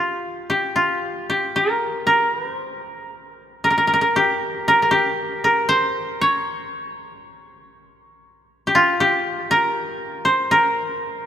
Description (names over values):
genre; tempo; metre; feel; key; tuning
japanese traditional, Japanese chamber music; 58 BPM; 4/4; rubato; unclear; A4 = 441 Hz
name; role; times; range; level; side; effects
koto; solo; 0.0-11.3 s; F4 to Db5; -17 LUFS; equal; none
room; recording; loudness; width
moderate cathedral reverb, RT60 4.0 s; none; -17 LUFS; side -10 dB against mid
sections
0.5-11.3 A section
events
none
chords
none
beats
| 0.49 1.53 2.58 3.62 | 4.64 5.67 6.69 7.70 | 8.72 9.74 10.76